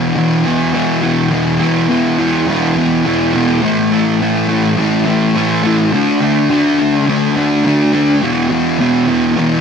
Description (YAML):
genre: rock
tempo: 104 BPM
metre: 4/4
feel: straight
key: unclear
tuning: A4 = 440 Hz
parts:
  - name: fuzz guitar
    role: solo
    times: 0.0-9.6 s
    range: E2 to D4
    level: -11 LUFS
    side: equal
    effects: distortion, lush chorus
room: moderate lush hall reverb, RT60 1.8 s, digital ambience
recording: none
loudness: -11 LUFS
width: side -6 dB against mid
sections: 0.0-8.2 A section; 8.2-9.6 A section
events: none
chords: 0.0 E5; 3.6 A5; 5.9 D5; 8.2 E5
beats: 0.17 0.75 | 1.32 1.90 2.47 3.05 | 3.62 4.20 4.77 5.35 | 5.92 6.50 7.07 7.65 | 8.22 8.79 9.37